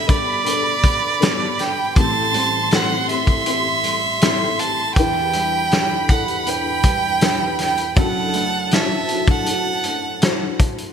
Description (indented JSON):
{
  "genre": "pop ballad",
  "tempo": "80 BPM",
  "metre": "4/4",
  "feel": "straight",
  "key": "G major",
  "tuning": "A4 = 440 Hz",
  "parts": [
    { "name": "clear violin", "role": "melody", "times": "0.0-10.6 s", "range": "D5 to A5", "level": "-20 LUFS", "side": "right 4 dB", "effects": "none" },
    { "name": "warm studio violin section", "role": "second line", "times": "0.0-10.6 s", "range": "A5 to C6", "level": "-26 LUFS", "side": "left 1 dB", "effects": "ping-pong delay" },
    { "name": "felt-muted upright piano", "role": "accompaniment", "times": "0.0-10.9 s", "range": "F#1 to C5", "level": "-25 LUFS", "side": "left 4 dB", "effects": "ensemble chorus" },
    { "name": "flamenco guitar", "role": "arpeggios", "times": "0.0-10.9 s", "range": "E2 to A4", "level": "-31 LUFS", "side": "right 6 dB", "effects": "none" },
    { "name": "loose indie drum kit", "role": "drums", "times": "0.1-10.9 s", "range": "hi-hat, kick drum, snare drum", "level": "-19 LUFS", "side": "left 1 dB", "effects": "gated reverb" }
  ],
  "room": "light reverb, small room ambience",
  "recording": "bright 1980s-style digital production",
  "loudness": "-16 LUFS",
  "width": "side -8 dB against mid",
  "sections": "0.0-10.9 A section",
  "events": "none",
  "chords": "0.0 Gadd9; 2.0 Am7; 5.0 Em7; 8.0 Dadd9/F#"
}